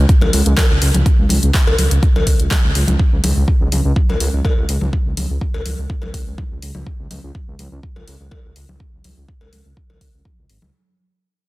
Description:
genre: progressive house.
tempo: 124 BPM.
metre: 4/4.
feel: straight.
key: unclear.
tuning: A4 = 440 Hz.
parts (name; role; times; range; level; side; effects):
dark detuned saw bass; bass; 0.0-10.7 s; G#1 to C#2; -17 LUFS; equal; sidechain pumping.
deep house drum kit; drums; 0.1-10.6 s; handclaps, hi-hat; -23 LUFS; left 1 dB; none.
electronic kick drum; drums; 0.1-10.4 s; none; -16 LUFS; equal; none.
congas and cowbell; percussion; 0.2-10.7 s; none; -24 LUFS; left 2 dB; sidechain pumping on perc.
room: little or no reverb.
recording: dense, heavily limited modern master.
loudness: -14 LUFS.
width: side -19 dB against mid.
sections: 0.0-10.7 A section.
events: fade-out 0.0-10.7.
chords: none.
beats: 0.09 0.57 | 1.06 1.54 2.03 2.51 | 2.99 3.48 3.96 4.45 | 4.93 5.41 5.90 6.38 | 6.87 7.35 7.83 8.32 | 8.80 9.28 9.77 10.25.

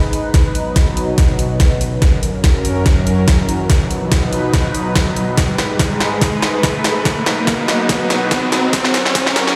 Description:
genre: heavy wobble dubstep.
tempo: 143 BPM.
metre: 4/4.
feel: swing 54% on 16ths, half-time.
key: unclear.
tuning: A4 = 441 Hz.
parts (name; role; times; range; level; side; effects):
supersaw pad; sustained chords; 0.0-9.6 s; F#2 to B4; -21 LUFS; equal; phaser, sidechain pumping, low-pass filter.
riser; sound effects; 0.2-9.6 s; none; -24 LUFS; equal; none.
dubstep drum kit; drums; 0.1-9.6 s; hi-hat, snare drum; -22 LUFS; equal; overdrive, high-pass filter on hats, high-pass filter on toms, high-pass filter on snare, high-pass filter on room.
electronic kick drum; drums; 0.3-9.2 s; none; -17 LUFS; equal; overdrive.
room: moderate lush hall reverb, RT60 2.1 s.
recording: played on a big sound system in a bare room, stone room reverb, high-pass filter.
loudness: -15 LUFS.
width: mono.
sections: 0.0-9.6 A section.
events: build-up 0.0-9.6; drum fill 0.0-9.6; filter sweep on supersaw synth 0.0-9.6; filter sweep 0.0-9.6; riser 0.6-9.6.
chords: 0.3 B; 2.0 F#; 3.7 B; 5.4 G#m; 7.1 B; 8.7 F#.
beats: | 0.34 0.76 1.18 1.60 | 2.02 2.44 2.86 3.28 | 3.70 4.12 4.54 4.96 | 5.38 5.79 6.21 6.63 | 7.05 7.47 7.89 8.31 | 8.73 9.15.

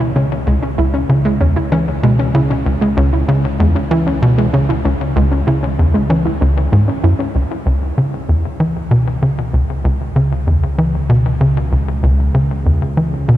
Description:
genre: ambient, sequencer-driven space music.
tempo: 96 BPM.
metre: 4/4.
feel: straight.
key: C# minor.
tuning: A4 = 440 Hz.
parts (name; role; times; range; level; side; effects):
soft round pluck; arpeggios; 0.0-7.3 s; G#3 to E4; -20 LUFS; right 1 dB; chorus, auto-pan, ping-pong delay, shimmer reverb.
tight sequencer bass; riff; 0.0-13.4 s; C#2 to E3; -14 LUFS; equal; ping-pong delay.
analog drone; bass; 0.0-13.4 s; C#2; -21 LUFS; equal; chorus.
room: moderate huge ambient reverb, RT60 8.1 s.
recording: dreamy mix soaked in reverb.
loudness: -13 LUFS.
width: side -13 dB against mid.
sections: 0.0-7.3 A section; 7.3-13.4 B section.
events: none.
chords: 0.0 C#m.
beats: 0.47 1.10 1.72 | 2.35 2.97 3.60 4.22 | 4.85 5.47 6.10 6.72 | 7.35 7.97 8.60 9.22 | 9.85 10.47 11.10 11.72 | 12.35 12.97.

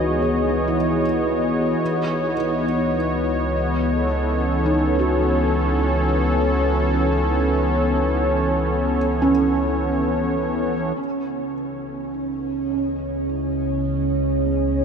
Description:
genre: ambient.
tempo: 52 BPM.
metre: 4/4.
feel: straight.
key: C# minor.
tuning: A4 = 437 Hz.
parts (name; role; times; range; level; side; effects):
warm analog pad; sustained chords; 0.0-14.8 s; E3 to D#5; -21 LUFS; equal; chorus.
felt-muted upright piano; arpeggios; 0.0-14.8 s; B3 to C#5; -26 LUFS; right 1 dB; diffuse ambient delay.
warm sub bass; bass; 0.0-14.8 s; C#2; -26 LUFS; equal; none.
overtone-sweeping drone; drone; 11.6-14.8 s; C#3 to C#4; -23 LUFS; right 2 dB; chorus, built-in reverb, phaser.
room: moderate huge ambient reverb, RT60 8.6 s.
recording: none.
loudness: -19 LUFS.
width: side -6 dB against mid.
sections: 0.0-11.0 A section; 11.0-14.8 B section.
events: none.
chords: 0.0 C#m9; 1.8 Aadd9/C#; 11.0 C#m9.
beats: 0.68 | 1.81 2.94 4.08 5.22 | 6.35 7.49 8.64 9.81 | 10.98 12.14 13.30 14.46.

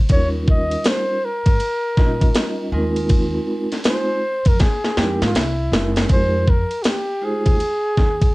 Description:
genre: hip hop, jazz-hop.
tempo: 80 BPM.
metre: 4/4.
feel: swing 64% on 16ths.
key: F minor.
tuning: A4 = 443 Hz.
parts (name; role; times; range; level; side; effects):
breathy flugelhorn; melody; 0.1-8.3 s; E4 to Eb5; -22 LUFS; equal; none.
vibraphone with medium mallets; accompaniment; 0.1-7.5 s; G3 to Eb5; -24 LUFS; right 1 dB; cassette tape.
upright bass; bass; 0.1-8.3 s; Gb1 to Bb2; -23 LUFS; equal; none.
drum and bass drum kit; drums; 0.1-8.3 s; hi-hat, kick drum, ride cymbal, snare drum; -17 LUFS; equal; vintage 12-bit sampler grit, cassette tape.
room: light reverb.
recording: home recording on cassette.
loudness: -16 LUFS.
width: side -21 dB against mid.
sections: 0.0-6.1 A section; 6.1-8.3 B section.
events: drum fill 4.6-6.1.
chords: 0.1 Eb9; 2.7 Ab69/Eb; 5.3 C7alt; 6.1 Fm11.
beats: | 0.10 0.85 1.60 2.35 | 3.10 3.85 4.60 5.35 | 6.10 6.85 7.60.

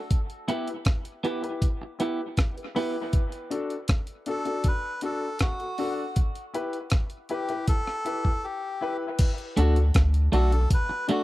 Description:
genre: dub reggae.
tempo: 79 BPM.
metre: 4/4.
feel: straight.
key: D major.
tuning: A4 = 440 Hz.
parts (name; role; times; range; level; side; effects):
breakbeat sampler-style drum kit; drums; 0.1-11.2 s; crash cymbal, hi-hat, kick drum, rim click; -24 LUFS; equal; none.
clean electric guitar; accompaniment; 0.5-3.0, 9.6-11.2 s; A3 to G4; -30 LUFS; right 2 dB; dub echo.
warm concert grand piano; stabs; 0.5-11.2 s; D4 to B4; -32 LUFS; left 3 dB; dub echo.
melodica; melody; 4.3-11.2 s; F#4 to B4; -32 LUFS; left 1 dB; dub echo.
soft dub sub bass; bass; 9.6-10.7 s; B1 to D2; -20 LUFS; equal; none.
room: little or no reverb.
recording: dry, close 1970s-style studio recording.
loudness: -24 LUFS.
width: side -17 dB against mid.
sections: 0.0-9.2 A section; 9.2-11.2 B section.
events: break 8.4-9.2.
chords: 0.1 Em; 3.1 D; 6.2 Em; 9.2 D.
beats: | 0.11 0.86 1.62 2.38 | 3.14 3.89 4.65 5.41 | 6.17 6.92 7.68 8.44 | 9.19 9.95 10.71.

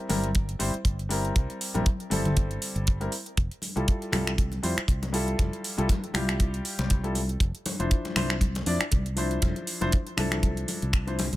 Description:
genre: nu-disco, nu disco.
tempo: 119 BPM.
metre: 4/4.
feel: swing 56% on 16ths.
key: unclear.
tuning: A4 = 440 Hz.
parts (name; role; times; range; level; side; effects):
warm baby grand piano; accompaniment; 0.0-11.2 s; F3 to D5; -31 LUFS; left 1 dB; sidechain pumping, digital delay.
fingered electric bass; bass; 0.1-11.4 s; F1 to F2; -30 LUFS; equal; none.
pop drum kit; drums; 0.1-11.4 s; finger snaps, hi-hat; -32 LUFS; right 1 dB; overdrive.
congas; percussion; 0.1-11.3 s; none; -34 LUFS; left 2 dB; none.
kick drum; drums; 0.4-11.0 s; none; -24 LUFS; equal; none.
room: small room ambience.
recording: none.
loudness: -24 LUFS.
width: side -16 dB against mid.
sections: 0.0-11.4 A section.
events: none.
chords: 0.0 C7; 3.1 Fmaj9; 7.4 Dm9/F.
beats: 0.35 0.85 | 1.36 1.86 2.37 2.87 | 3.37 3.88 4.38 4.89 | 5.39 5.89 6.40 6.90 | 7.41 7.91 8.41 8.92 | 9.42 9.93 10.43 10.94.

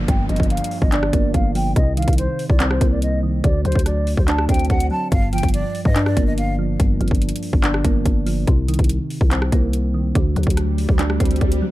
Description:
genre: hip hop, trap.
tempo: 143 BPM.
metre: 4/4.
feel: half-time.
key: G minor.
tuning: A4 = 440 Hz.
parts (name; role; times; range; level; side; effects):
soft electric-piano-like synth keys; accompaniment; 0.0-11.7 s; G2 to D4; -23 LUFS; right 2 dB; chorus, low-pass filter.
growling 808-style bass; bass; 0.0-11.6 s; G1 to G2; -21 LUFS; equal; none.
downlifter and swell; sound effects; 0.0-1.8, 10.5-11.7 s; none; -31 LUFS; right 2 dB; none.
breathy hollow jazz flute; melody; 0.1-6.5 s; C5 to A5; -26 LUFS; equal; low-pass filter.
trap drum kit; drums; 0.1-11.6 s; handclaps, hi-hat, kick drum, rim click; -19 LUFS; equal; none.
room: digital ambience.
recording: dark, warm production.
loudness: -16 LUFS.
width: side -16 dB against mid.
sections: 0.0-11.7 A section.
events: filter sweep 0.0-5.1; swell 10.5-11.7.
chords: 0.0 Gm7; 1.8 Cm7; 3.4 D7; 5.1 Gm7; 8.5 Cm7; 10.2 D7.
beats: | 0.08 0.50 0.92 1.34 | 1.76 2.18 2.60 3.02 | 3.44 3.86 4.28 4.70 | 5.12 5.54 5.96 6.38 | 6.80 7.22 7.64 8.05 | 8.47 8.89 9.31 9.73 | 10.15 10.57 10.99 11.41.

